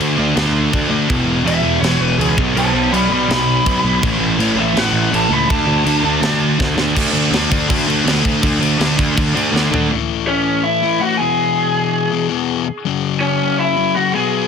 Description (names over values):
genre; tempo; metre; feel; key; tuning
punk rock; 163 BPM; 4/4; straight; unclear; A4 = 445 Hz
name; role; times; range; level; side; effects
high-gain distorted guitar; riff; 0.0-9.9 s; E2 to D4; -22 LUFS; equal; distortion
sludgy distorted guitar; riff; 0.0-14.5 s; E2 to D4; -20 LUFS; left 11 dB; overdrive
sludgy distorted guitar; riff; 0.0-9.9 s; E2 to D4; -20 LUFS; right 8 dB; overdrive
fuzz picked electric bass; bass; 0.0-9.9 s; E1 to D3; -20 LUFS; equal; overdrive
tight metal drum kit; drums; 0.0-9.8 s; crash cymbal, kick drum, snare drum, toms; -20 LUFS; equal; none
raw garage guitar; melody; 1.5-6.6, 10.3-14.5 s; C#4 to B5; -19 LUFS; equal; overdrive, ping-pong delay
room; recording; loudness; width
little or no reverb; dense, heavily limited modern master; -14 LUFS; side -6 dB against mid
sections
0.0-7.0 A section; 7.0-9.9 B section; 9.9-14.5 C section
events
half time 0.0-7.0; overdriven electric guitar solo 0.0-7.0; drum fill 6.6-7.0, 9.5-9.9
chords
0.0 D5; 1.1 E5; 2.4 Bm; 4.0 A5; 5.5 D5; 9.9 A; 11.2 E; 12.9 F#5